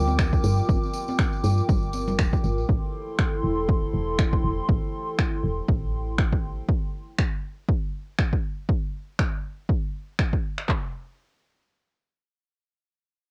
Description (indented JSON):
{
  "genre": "afro house",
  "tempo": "120 BPM",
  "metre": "4/4",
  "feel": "swing 56% on 16ths",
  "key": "unclear",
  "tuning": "A4 = 440 Hz",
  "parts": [
    { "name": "dark analog pad", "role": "sustained chords", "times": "0.0-6.6 s", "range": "E4 to D6", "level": "-33 LUFS", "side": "equal", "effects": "chorus, sidechain pumping, cassette tape" },
    { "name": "woody FM bass", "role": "bass", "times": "0.0-6.6 s", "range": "D1 to G2", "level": "-29 LUFS", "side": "equal", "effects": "sidechain pumping" },
    { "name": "congas", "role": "percussion", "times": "0.1-2.2 s", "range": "none", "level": "-35 LUFS", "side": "equal", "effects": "none" },
    { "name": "tambourine", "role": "percussion", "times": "0.1-2.7 s", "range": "none", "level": "-45 LUFS", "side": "equal", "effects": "none" },
    { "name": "deep house drum kit", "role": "drums", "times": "0.2-10.8 s", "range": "handclaps, kick drum", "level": "-26 LUFS", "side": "equal", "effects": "overdrive, cassette tape" },
    { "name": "electronic finger snaps", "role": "drums", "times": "0.2-10.7 s", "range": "none", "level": "-32 LUFS", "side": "equal", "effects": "overdrive, cassette tape" }
  ],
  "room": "light reverb",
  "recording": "home recording on cassette",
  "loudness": "-25 LUFS",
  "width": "mono",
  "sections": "0.0-10.7 A section; 10.7-13.3 B section",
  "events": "none",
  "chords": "0.0 Gm7; 2.7 Am7; 10.7 N.C."
}